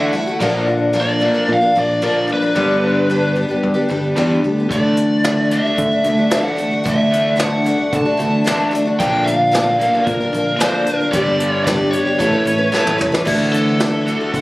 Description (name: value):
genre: folk rock and heartland rock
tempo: 112 BPM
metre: 4/4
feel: straight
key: D major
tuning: A4 = 440 Hz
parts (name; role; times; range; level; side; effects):
- biting lead guitar; melody; 0.0-14.4 s; A4 to A5; -19 LUFS; equal; overdrive, tape echo
- picked twelve-string acoustic guitar; accompaniment; 0.0-14.4 s; G2 to B4; -18 LUFS; left 1 dB; none
- overdriven electric guitar; riff; 0.0-14.4 s; G2 to F#4; -24 LUFS; right 2 dB; none
- modern bright fingered electric bass; bass; 0.4-14.4 s; G1 to D3; -20 LUFS; equal; none
- soft brush drum kit; drums; 4.7-14.4 s; crash cymbal, hi-hat, kick drum, snare drum, toms; -22 LUFS; equal; none
room: light reverb, studio reverb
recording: recorded on a phone in the room, club reverb, compression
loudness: -14 LUFS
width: side -19 dB against mid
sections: 0.0-13.3 A section; 13.3-14.4 A section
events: drum fill 12.7-13.3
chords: 0.4 Bb; 2.6 G; 4.7 Dadd9; 9.0 Bb; 11.1 G; 12.2 Aadd9; 13.3 Dadd9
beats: | 0.41 0.94 1.48 2.02 | 2.56 3.10 3.63 4.17 | 4.71 5.24 5.78 6.32 | 6.85 7.39 7.93 8.46 | 9.00 9.53 10.07 10.60 | 11.14 11.67 12.21 12.74 | 13.27 13.81 14.34